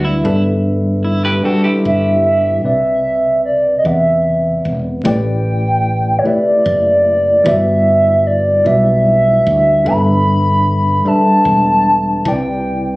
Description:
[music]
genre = R&B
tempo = 50 BPM (dotted quarters)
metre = 6/8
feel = straight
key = unclear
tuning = A4 = 440 Hz
[part]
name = electric guitar at the edge of break-up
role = second line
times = 0.0-2.6 s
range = E4 to B4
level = -20 LUFS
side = right 1 dB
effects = harmonic tremolo
[part]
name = mellow tine electric piano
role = accompaniment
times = 0.0-13.0 s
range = C3 to G5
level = -17 LUFS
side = equal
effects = medium stereo tremolo
[part]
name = woody fretless electric bass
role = bass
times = 0.0-13.0 s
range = E1 to E2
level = -18 LUFS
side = equal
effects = none
[part]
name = hollow clarinet-like synth lead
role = melody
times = 1.9-13.0 s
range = C#5 to B5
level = -13 LUFS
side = equal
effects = chorus, slapback echo
[sound]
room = moderate studio reverb, RT60 0.9 s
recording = recorded on a phone in the room, studio reverb, compression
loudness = -11 LUFS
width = side -21 dB against mid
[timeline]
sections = 0.0-5.0 A section; 5.0-13.0 B section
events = none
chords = 0.2 G69; 2.6 Cmaj7; 5.0 A7sus4; 7.4 Em7/G; 9.8 G69; 12.2 Cmaj7

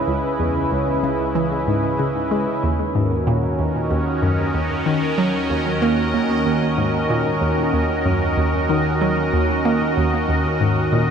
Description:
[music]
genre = ambient, sequencer-driven space music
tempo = 94 BPM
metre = 4/4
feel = straight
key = unclear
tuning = A4 = 438 Hz
[part]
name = sweeping resonant pad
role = sustained chords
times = 0.0-11.1 s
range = C#3 to D#5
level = -20 LUFS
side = equal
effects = chorus
[part]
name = fat analog bass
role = bass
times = 0.0-11.1 s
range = D#2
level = -29 LUFS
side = equal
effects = none
[part]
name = hollow square pluck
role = riff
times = 0.1-11.0 s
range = C#2 to A#3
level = -21 LUFS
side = equal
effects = chorus, phaser, tape echo
[sound]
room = wet huge ambient reverb, RT60 7.9 s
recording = none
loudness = -17 LUFS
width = side -7 dB against mid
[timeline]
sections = 0.0-11.1 A section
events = none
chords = 0.0 C#m7; 2.6 D#m7

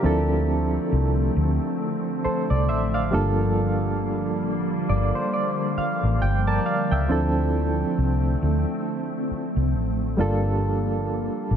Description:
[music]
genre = R&B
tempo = 68 BPM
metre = 4/4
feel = swing 58% on 16ths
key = D minor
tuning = A4 = 440 Hz
[part]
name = soft electric-piano-like synth keys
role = accompaniment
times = 0.0-11.6 s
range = F3 to A5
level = -25 LUFS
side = right 2 dB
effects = chorus, tremolo
[part]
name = glassy FM pad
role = sustained chords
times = 0.0-11.6 s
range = D3 to C4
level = -28 LUFS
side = left 1 dB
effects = ensemble chorus, built-in reverb
[part]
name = vintage muted fingered electric bass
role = bass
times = 0.0-11.6 s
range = G1 to D2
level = -23 LUFS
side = equal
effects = none
[sound]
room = light reverb, digital ambience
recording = none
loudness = -21 LUFS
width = side -8 dB against mid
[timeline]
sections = 0.0-11.6 A section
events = synth keys fill 4.4-7.1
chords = 0.0 Dm7; 3.1 Gm7; 7.1 Dm7; 10.2 Gm7

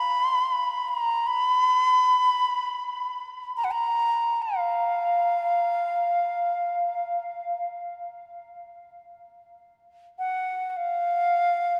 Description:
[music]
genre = world meditative, free-time meditation music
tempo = free time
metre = none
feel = none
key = unclear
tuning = A4 = 441 Hz
[part]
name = bright reedy xiao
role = solo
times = 0.0-11.8 s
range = F5 to Cb6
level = -25 LUFS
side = equal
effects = delay
[sound]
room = wet huge ambient reverb, RT60 7.0 s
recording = none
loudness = -25 LUFS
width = mono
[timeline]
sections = 0.0-11.8 A section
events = none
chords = none

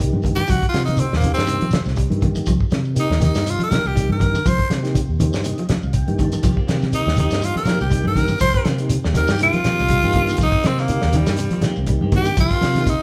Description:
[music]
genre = afrobeat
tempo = 121 BPM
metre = 4/4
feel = swing 55% on 16ths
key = C minor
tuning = A4 = 443 Hz
[part]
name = tonewheel organ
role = accompaniment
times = 0.0-12.9 s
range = Bb3 to A5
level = -31 LUFS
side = equal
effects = overdrive, slow rotary speaker
[part]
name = clean electric guitar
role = arpeggios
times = 0.0-12.5 s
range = C3 to G3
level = -29 LUFS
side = equal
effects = none
[part]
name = fingered electric bass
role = bass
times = 0.0-12.9 s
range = C2 to C3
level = -24 LUFS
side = equal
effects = none
[part]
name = warm soul drum kit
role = drums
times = 0.0-13.0 s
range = hi-hat, kick drum, snare drum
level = -25 LUFS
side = equal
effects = none
[part]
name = congas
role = percussion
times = 0.1-13.0 s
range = none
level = -28 LUFS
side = equal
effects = none
[part]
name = shekere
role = percussion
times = 0.2-13.0 s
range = none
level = -29 LUFS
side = equal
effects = none
[part]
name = raspy tenor saxophone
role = melody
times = 0.4-13.0 s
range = G3 to C5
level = -24 LUFS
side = equal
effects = none
[part]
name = semi-hollow electric guitar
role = stabs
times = 6.4-13.0 s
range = Eb3 to G4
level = -34 LUFS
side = equal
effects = none
[sound]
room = moderate large studio reverb, RT60 1.3 s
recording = band playing live in one room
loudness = -19 LUFS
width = mono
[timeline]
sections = 0.0-13.0 A section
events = tenor saxophone solo 0.0-13.0; tonewheel organ fill 5.0-6.4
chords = 0.0 Cm7

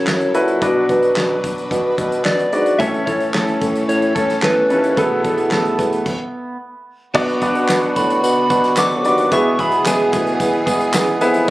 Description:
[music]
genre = piano-driven pop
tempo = 110 BPM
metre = 4/4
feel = straight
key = unclear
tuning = A4 = 440 Hz
[part]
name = soft struck synth lead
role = melody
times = 0.0-10.6 s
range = A4 to D6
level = -20 LUFS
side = equal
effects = chorus
[part]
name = clear concert grand piano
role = accompaniment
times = 0.0-11.5 s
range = A2 to E5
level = -19 LUFS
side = left 1 dB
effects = none
[part]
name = clear studio string section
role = sustained chords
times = 0.0-11.5 s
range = D3 to B4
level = -30 LUFS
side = equal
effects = none
[part]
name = mellow bassoon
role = bass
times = 0.0-11.5 s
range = D2 to B2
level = -21 LUFS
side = equal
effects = none
[part]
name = loose indie drum kit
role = drums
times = 0.1-11.5 s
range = crash cymbal, handclaps, hi-hat, kick drum, snare drum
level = -24 LUFS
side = equal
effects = none
[part]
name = direct-recorded clean electric guitar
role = riff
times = 2.8-11.5 s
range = E2 to A4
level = -22 LUFS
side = right 2 dB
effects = spring reverb
[part]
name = tambourine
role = percussion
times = 7.1-11.3 s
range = none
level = -32 LUFS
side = equal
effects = none
[sound]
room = light reverb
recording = recorded on a phone in the room, club reverb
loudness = -14 LUFS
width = side -17 dB against mid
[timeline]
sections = 0.0-7.1 A section; 7.1-11.5 B section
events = stop 6.1-7.1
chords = 0.0 F#m7; 0.6 Bm; 2.8 A; 5.0 Esus4; 7.1 Bm; 9.3 E

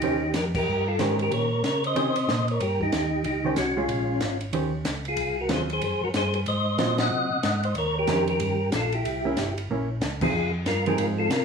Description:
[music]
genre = soul jazz organ trio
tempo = 186 BPM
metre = 4/4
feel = swing 62% on 8ths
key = Eb mixolydian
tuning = A4 = 440 Hz
[part]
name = percussive tonewheel organ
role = melody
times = 0.0-11.4 s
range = Db4 to Gb5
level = -26 LUFS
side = left 1 dB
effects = overdrive, chorus vibrato, fast rotary speaker
[part]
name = hollow-body jazz guitar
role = accompaniment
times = 0.0-11.3 s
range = Eb3 to C5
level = -28 LUFS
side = right 4 dB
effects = none
[part]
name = mellow tonewheel organ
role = bass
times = 0.0-11.4 s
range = G1 to Db3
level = -29 LUFS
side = equal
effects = overdrive, chorus vibrato
[part]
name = compact cocktail drum kit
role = drums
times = 0.0-11.4 s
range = crash cymbal, hi-hat, kick drum, ride cymbal, snare drum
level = -32 LUFS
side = equal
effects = none
[sound]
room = light reverb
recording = studio reverb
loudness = -23 LUFS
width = side -6 dB against mid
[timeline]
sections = 0.0-11.4 A section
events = band accent 0.5, 6.9, 10.2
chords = 0.0 Eb13; 3.9 Bbm7; 4.5 Eb13; 5.2 Ab13; 7.8 Eb13; 9.0 C7b9; 10.3 Fm7

